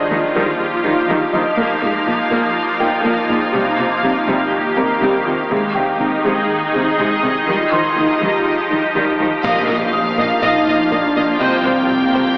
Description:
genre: cinematic, hybrid orchestral and electronic film score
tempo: 122 BPM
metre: 4/4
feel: straight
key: unclear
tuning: A4 = 440 Hz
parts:
  - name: warm symphonic viola section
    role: accompaniment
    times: 0.0-12.2 s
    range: F3 to Eb5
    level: -20 LUFS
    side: equal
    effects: none
  - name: granular cloud pad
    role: sustained chords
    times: 0.0-12.4 s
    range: Eb3 to F5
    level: -18 LUFS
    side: equal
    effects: built-in reverb
  - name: felt-muted upright piano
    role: texture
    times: 0.0-11.4 s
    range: D4 to Eb6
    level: -25 LUFS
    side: equal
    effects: tape echo
  - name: soft round pluck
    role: arpeggios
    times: 0.1-12.3 s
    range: C3 to Bb4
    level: -29 LUFS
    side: equal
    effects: none
  - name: warm symphonic cello section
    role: bass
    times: 0.1-12.2 s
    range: Bb2 to Eb3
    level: -22 LUFS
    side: equal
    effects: none
  - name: warm symphonic violin section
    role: melody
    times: 9.4-12.4 s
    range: F5 to G5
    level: -23 LUFS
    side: equal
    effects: none
  - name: warm symphonic violin section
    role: second line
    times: 9.4-12.2 s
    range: C5 to F5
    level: -23 LUFS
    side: equal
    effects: none
  - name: mellow French horn section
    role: sustained chords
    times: 9.4-12.4 s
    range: Bb3 to Eb4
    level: -18 LUFS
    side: equal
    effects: none
  - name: rubbery square bass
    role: riff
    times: 9.4-12.3 s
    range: C2 to Bb3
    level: -34 LUFS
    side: equal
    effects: none
  - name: detuned saw bass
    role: bass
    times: 9.4-12.4 s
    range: Bb1 to C2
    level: -26 LUFS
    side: equal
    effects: none
  - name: rich symphonic double bass section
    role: bass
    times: 9.4-12.2 s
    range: Bb1 to C2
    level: -34 LUFS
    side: equal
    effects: none
  - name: impact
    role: sound effects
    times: 9.4-11.4 s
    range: none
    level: -28 LUFS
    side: equal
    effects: none
room: wet scoring stage reverb, RT60 1.7 s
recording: AM radio sound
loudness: -14 LUFS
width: side -33 dB against mid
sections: 0.0-9.4 A section; 9.4-12.4 B section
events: build-up 0.0-9.4; impact 9.4-11.4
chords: 0.0 Ebadd9; 1.6 Bbsus4; 3.5 Cm; 5.5 Ab; 7.5 Ebadd9; 9.4 Bbsus4; 11.4 Cm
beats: 0.10 0.59 1.08 | 1.57 2.06 2.56 3.05 | 3.54 4.03 4.52 5.02 | 5.51 6.00 6.49 6.98 | 7.47 7.97 8.46 8.95 | 9.44 9.93 10.43 10.92 | 11.41 11.90

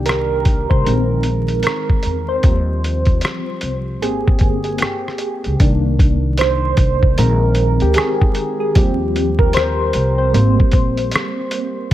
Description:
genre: lo-fi hip hop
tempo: 76 BPM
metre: 4/4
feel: swing 62% on 16ths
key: unclear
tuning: A4 = 440 Hz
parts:
  - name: soft electric-piano-like synth keys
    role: accompaniment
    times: 0.0-11.9 s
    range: Eb3 to C5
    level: -19 LUFS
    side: equal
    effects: chorus, phaser, low-pass filter
  - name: upright bass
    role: bass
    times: 0.0-11.1 s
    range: G1 to E2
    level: -18 LUFS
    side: equal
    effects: none
  - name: lo-fi sampler-style drum kit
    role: drums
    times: 0.1-11.9 s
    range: hi-hat, kick drum, rim click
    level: -16 LUFS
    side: equal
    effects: none
room: little or no reverb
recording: vinyl crackle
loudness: -14 LUFS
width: side -13 dB against mid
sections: 0.0-5.6 A section; 5.6-11.9 B section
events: synth keys solo 0.0-5.6, 5.6-11.9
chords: 0.0 Cm9; 0.9 Bb7sus4; 2.4 Eb6; 4.0 Abmaj7; 5.6 Cm9; 7.2 Bb7sus4; 8.8 Eb6; 10.3 Abmaj7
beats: 0.07 0.86 1.65 | 2.44 3.23 4.02 4.81 | 5.59 6.38 7.17 7.96 | 8.75 9.54 10.33 11.12 | 11.91

